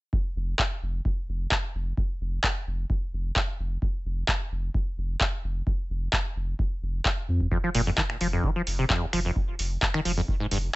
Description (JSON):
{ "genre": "acid house", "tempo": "130 BPM", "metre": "4/4", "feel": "straight", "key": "unclear", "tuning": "A4 = 440 Hz", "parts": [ { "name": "electronic kick drum", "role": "drums", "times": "0.1-10.4 s", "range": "none", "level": "-28 LUFS", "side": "equal", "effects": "none" }, { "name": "saturated sub bass", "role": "bass", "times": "0.4-10.7 s", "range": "F1 to F2", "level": "-28 LUFS", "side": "equal", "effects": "sidechain pumping" }, { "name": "booming analog drum machine", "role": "drums", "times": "0.6-10.6 s", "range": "finger snaps, handclaps, hi-hat", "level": "-27 LUFS", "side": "equal", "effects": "none" }, { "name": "acid bass, saw", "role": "riff", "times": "7.5-10.6 s", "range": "Eb2 to F3", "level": "-27 LUFS", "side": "equal", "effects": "analog chorus, tape echo" } ], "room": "little or no reverb", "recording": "nothing above 8.0 kHz", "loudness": "-25 LUFS", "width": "side -20 dB against mid", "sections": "0.1-10.8 A section", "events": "none", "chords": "none" }